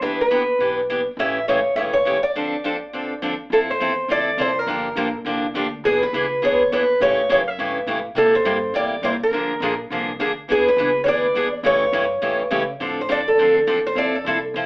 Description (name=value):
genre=acoustic string swing (jazz manouche)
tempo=207 BPM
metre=4/4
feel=swing 60% on 8ths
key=D minor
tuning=A4 = 440 Hz
part: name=picked steel-string acoustic guitar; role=melody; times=0.0-14.4 s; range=G#4 to E5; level=-19 LUFS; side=equal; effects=none
part: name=picked steel-string acoustic guitar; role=accompaniment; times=0.0-14.7 s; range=C3 to A4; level=-21 LUFS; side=equal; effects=none
part: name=upright bass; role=bass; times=0.0-14.7 s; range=E1 to C#3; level=-37 LUFS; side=equal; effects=none
room=wet studio reverb, RT60 0.5 s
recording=heard from further back in the room, telephone sound, faint mains hum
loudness=-17 LUFS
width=side -27 dB against mid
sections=0.0-3.5 A section; 3.5-12.8 B section; 12.8-14.7 C section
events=break 2.4-3.5; steel-string acoustic guitar solo 12.8-14.7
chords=0.0 Em7; 1.2 A7; 2.4 Dm7; 3.5 Fmaj7; 4.7 Gm7; 5.8 E7; 7.0 A7; 8.2 C7; 9.3 Bb7; 10.5 E7; 11.6 A7; 12.8 Dm9; 14.0 Fmaj7